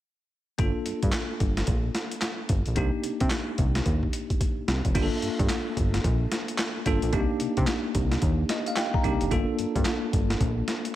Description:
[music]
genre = R&B, new jack swing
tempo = 110 BPM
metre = 4/4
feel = swing 62% on 16ths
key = unclear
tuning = A4 = 441 Hz
[part]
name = bell-like tine electric piano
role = accompaniment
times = 0.6-11.0 s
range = Bb3 to Bb5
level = -29 LUFS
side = equal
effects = medium stereo tremolo
[part]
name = fat analog bass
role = bass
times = 0.6-10.6 s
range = F1 to C3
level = -27 LUFS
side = equal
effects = none
[part]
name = boom bap sampler-style drum kit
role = drums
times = 0.6-10.9 s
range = crash cymbal, handclaps, hi-hat, kick drum, snare drum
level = -27 LUFS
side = equal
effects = overdrive
[sound]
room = digital ambience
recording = none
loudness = -24 LUFS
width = side -13 dB against mid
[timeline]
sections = 0.6-4.9 A section; 4.9-11.0 B section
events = drum fill 3.9-4.9; tine electric piano fill 8.2-9.3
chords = 0.6 Gm7; 2.8 Cm7; 4.9 Gm7; 7.1 Cm7; 9.3 Gm7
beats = | 0.58 1.13 1.68 2.22 | 2.77 3.31 3.86 4.40 | 4.95 5.50 6.04 6.58 | 7.13 7.68 8.22 8.77 | 9.31 9.86 10.40 10.95

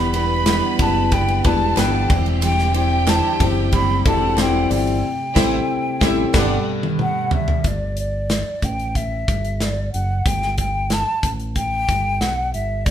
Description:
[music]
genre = piano-driven pop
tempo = 92 BPM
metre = 4/4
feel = straight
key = G major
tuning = A4 = 444 Hz
[part]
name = breathy hollow concert flute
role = melody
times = 0.0-12.9 s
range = D5 to B5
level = -23 LUFS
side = equal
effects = none
[part]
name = warm studio violin section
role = second line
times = 0.0-6.6 s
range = D4 to B5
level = -28 LUFS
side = equal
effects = none
[part]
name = warm concert grand piano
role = accompaniment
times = 0.0-7.7 s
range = G2 to D5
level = -23 LUFS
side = left 5 dB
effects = none
[part]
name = mellow tonewheel organ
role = sustained chords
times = 0.0-7.6 s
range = B2 to G4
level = -32 LUFS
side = right 1 dB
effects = none
[part]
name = picked steel-string acoustic guitar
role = riff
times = 0.0-6.6 s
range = D3 to C5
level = -27 LUFS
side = right 6 dB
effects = none
[part]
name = fingered electric bass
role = bass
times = 0.0-12.9 s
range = E1 to B1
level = -23 LUFS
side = equal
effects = none
[part]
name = modern studio drum kit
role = drums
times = 0.1-12.9 s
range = crash cymbal, hi-hat, kick drum, ride cymbal, snare drum, toms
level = -22 LUFS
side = equal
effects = none
[part]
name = group handclap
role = percussion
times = 0.5-4.5 s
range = none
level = -34 LUFS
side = right 4 dB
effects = none
[sound]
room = moderate stone room reverb, RT60 1.1 s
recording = band playing live in one room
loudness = -17 LUFS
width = side -10 dB against mid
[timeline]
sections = 0.0-7.6 A section; 7.6-12.9 B section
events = band accent 5.0-7.6; drum fill 6.3-7.6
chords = 0.0 Em7; 2.1 Cadd9/E; 5.0 Am7; 6.3 Gadd9; 7.6 G5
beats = 0.47 1.12 1.78 | 2.43 3.08 3.73 4.38 | 5.04 5.69 6.34 6.99 | 7.64 8.30 8.95 9.60 | 10.25 10.90 11.56 12.21 | 12.86

